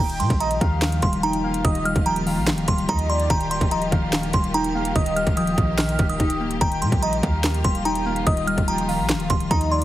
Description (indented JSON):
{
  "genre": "hip hop, trap",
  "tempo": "145 BPM",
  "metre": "4/4",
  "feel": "half-time",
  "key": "Eb major",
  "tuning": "A4 = 442 Hz",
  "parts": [
    { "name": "delicate synth tine bell", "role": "melody", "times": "0.0-9.8 s", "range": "Bb5 to F6", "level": "-26 LUFS", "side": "right 1 dB", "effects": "chorus, phaser" },
    { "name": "warm velvety synth lead", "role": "second line", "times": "0.0-9.8 s", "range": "D5 to G5", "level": "-29 LUFS", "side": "right 1 dB", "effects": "chorus, tape echo" },
    { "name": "glassy digital keys", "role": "accompaniment", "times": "0.0-9.8 s", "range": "Eb3 to Eb4", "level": "-25 LUFS", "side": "left 2 dB", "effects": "chorus" },
    { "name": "warm symphonic string section", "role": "sustained chords", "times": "0.0-9.8 s", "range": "Eb3 to G4", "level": "-33 LUFS", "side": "left 1 dB", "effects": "none" },
    { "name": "warm 808-style bass", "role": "bass", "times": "0.0-9.8 s", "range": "D1 to Bb2", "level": "-27 LUFS", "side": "equal", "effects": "none" },
    { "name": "trap drum kit", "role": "drums", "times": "0.1-9.8 s", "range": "handclaps, hi-hat, kick drum, snare drum", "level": "-23 LUFS", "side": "equal", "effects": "none" }
  ],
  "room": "light reverb, digital ambience",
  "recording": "heavily compressed radio sound",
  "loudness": "-19 LUFS",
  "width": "side -14 dB against mid",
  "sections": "0.0-9.8 A section",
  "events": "none",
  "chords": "0.0 Ebadd9"
}